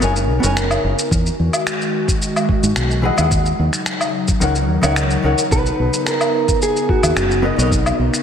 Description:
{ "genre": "sunset chillout", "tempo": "109 BPM", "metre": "4/4", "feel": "straight", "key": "B major", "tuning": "A4 = 442 Hz", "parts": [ { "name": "hollow-body jazz guitar", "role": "accompaniment", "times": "0.0-7.7 s", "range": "D#3 to G#5", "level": "-22 LUFS", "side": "left 1 dB", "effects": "auto-pan, ping-pong delay, slapback echo" }, { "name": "airy breathy pad", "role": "sustained chords", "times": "0.0-8.2 s", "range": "C#3 to A#4", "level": "-22 LUFS", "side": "left 1 dB", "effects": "chorus" }, { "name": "fingered electric bass", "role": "bass", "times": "0.0-8.1 s", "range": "F#1 to G#2", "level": "-18 LUFS", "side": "equal", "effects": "none" }, { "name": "electronic shaker, finger snaps and woodblock", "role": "drums", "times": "0.0-8.2 s", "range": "none", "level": "-22 LUFS", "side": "left 1 dB", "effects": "none" }, { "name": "electronic kick drum", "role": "drums", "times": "1.1-7.8 s", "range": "none", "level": "-19 LUFS", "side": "equal", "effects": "none" }, { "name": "mellow electric guitar", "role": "melody", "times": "5.5-7.4 s", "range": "F#4 to B4", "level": "-19 LUFS", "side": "right 3 dB", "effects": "vintage 12-bit sampler grit, tape echo" } ], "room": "wet lush hall reverb, RT60 2.5 s", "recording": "big arena sound", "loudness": "-15 LUFS", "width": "side -8 dB against mid", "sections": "0.0-8.2 A section", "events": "none", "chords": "0.0 Bmaj9; 1.1 Emaj9; 3.3 D#m7; 5.5 Bmaj9" }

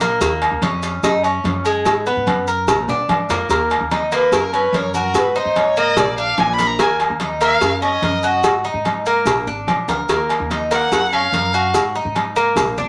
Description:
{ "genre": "latin, Cuban son and guajira", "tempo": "146 BPM", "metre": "4/4", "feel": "straight", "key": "Eb minor", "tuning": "A4 = 440 Hz", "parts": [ { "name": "Cuban tres", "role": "arpeggios", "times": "0.0-12.9 s", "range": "Ab3 to Bb4", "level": "-22 LUFS", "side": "equal", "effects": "none" }, { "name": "upright bass", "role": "bass", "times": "0.0-12.9 s", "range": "Ab1 to Bb2", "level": "-29 LUFS", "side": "equal", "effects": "none" }, { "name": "congas", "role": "percussion", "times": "0.0-12.9 s", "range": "none", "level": "-30 LUFS", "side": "equal", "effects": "none" }, { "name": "cowbell", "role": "percussion", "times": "0.0-12.8 s", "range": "none", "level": "-25 LUFS", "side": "equal", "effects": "none" }, { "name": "maracas", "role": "percussion", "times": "0.0-12.9 s", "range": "none", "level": "-37 LUFS", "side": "equal", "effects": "none" }, { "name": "agogo bells and timbales", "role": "percussion", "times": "0.4-12.8 s", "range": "none", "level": "-24 LUFS", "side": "equal", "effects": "none" }, { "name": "dark violin", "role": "melody", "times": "4.1-11.7 s", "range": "Bb4 to Cb6", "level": "-22 LUFS", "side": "equal", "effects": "none" } ], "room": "wet studio reverb, RT60 0.6 s", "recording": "none", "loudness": "-18 LUFS", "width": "mono", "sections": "0.0-3.5 A section; 3.5-12.9 B section", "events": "drum fill 2.9-3.5, 9.9; violin solo 3.5-12.9", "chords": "0.2 Eb5; 1.0 Gb5; 1.9 Abm7; 2.7 Bb7; 3.5 Eb5; 4.3 Gb; 5.2 Ab5; 6.0 Bb; 6.8 Eb5; 7.6 Gb6; 8.4 Ab5; 9.3 Bb7; 10.1 Eb5; 10.9 Gb; 11.7 Ab5" }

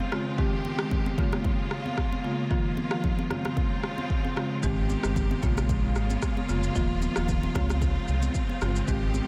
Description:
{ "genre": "afrobeats", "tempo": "113 BPM", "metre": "4/4", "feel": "swing 55% on 16ths", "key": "unclear", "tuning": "A4 = 443 Hz", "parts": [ { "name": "bright studio string section", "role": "sustained chords", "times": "0.0-9.3 s", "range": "Db3 to G4", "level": "-36 LUFS", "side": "equal", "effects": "none" }, { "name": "congas", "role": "percussion", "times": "0.0-9.3 s", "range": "none", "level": "-39 LUFS", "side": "equal", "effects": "none" }, { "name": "marimba with medium mallets", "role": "accompaniment", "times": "0.1-9.3 s", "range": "Db3 to G4", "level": "-33 LUFS", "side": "equal", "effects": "none" }, { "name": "afro-pop drum kit", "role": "drums", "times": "0.1-9.3 s", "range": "kick drum, rim click, shaker", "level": "-32 LUFS", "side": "equal", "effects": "vintage 12-bit sampler grit" }, { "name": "sub bass with octave", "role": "bass", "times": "4.6-9.2 s", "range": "Eb1 to Db2", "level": "-30 LUFS", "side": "equal", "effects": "none" } ], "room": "moderate huge ambient reverb, RT60 6.9 s", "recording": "dreamy mix soaked in reverb", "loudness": "-27 LUFS", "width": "mono", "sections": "0.0-9.3 A section", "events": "break 0.0-4.6", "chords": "0.4 Abmaj7; 1.2 Bbm7; 2.5 Ebsus2; 3.3 Dbmaj7; 4.6 Abmaj7; 5.4 Bbm7; 6.8 Ebsus2; 7.6 Dbmaj7" }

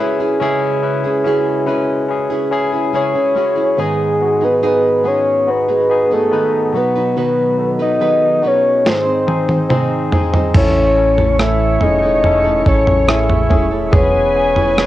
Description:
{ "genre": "pop ballad", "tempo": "71 BPM", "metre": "4/4", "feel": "straight", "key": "unclear", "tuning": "A4 = 440 Hz", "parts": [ { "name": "barky tine electric piano", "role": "accompaniment", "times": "0.0-14.9 s", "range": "G#2 to B4", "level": "-19 LUFS", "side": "left 4 dB", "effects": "medium stereo tremolo, cassette tape, plate reverb" }, { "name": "nylon-string guitar", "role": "arpeggios", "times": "0.0-14.9 s", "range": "G#2 to B#4", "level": "-21 LUFS", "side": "right 6 dB", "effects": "cassette tape, plate reverb" }, { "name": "soft octave-layered synth lead", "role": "melody", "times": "3.0-14.9 s", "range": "G#4 to E5", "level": "-15 LUFS", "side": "left 1 dB", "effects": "chorus, cassette tape, plate reverb" }, { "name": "dusty soul sampler-style drum kit", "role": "drums", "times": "8.9-14.9 s", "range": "crash cymbal, kick drum, rim click, snare drum, toms", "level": "-16 LUFS", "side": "right 1 dB", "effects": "overdrive, cassette tape" }, { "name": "warm sub bass", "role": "bass", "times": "10.5-14.9 s", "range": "D#1 to A1", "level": "-20 LUFS", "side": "right 1 dB", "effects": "none" }, { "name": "warm studio string section", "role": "sustained chords", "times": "10.6-14.9 s", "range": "B4 to G#5", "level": "-23 LUFS", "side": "equal", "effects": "cassette tape, plate reverb" } ], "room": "wet small room reverb, RT60 0.5 s", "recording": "home recording on cassette", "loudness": "-12 LUFS", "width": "side -14 dB against mid", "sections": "0.0-10.5 A section; 10.5-14.9 B section", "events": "drum fill 8.9-10.5", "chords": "0.0 C#m; 3.8 G#m; 6.7 B; 8.9 G#; 10.5 A; 13.9 E" }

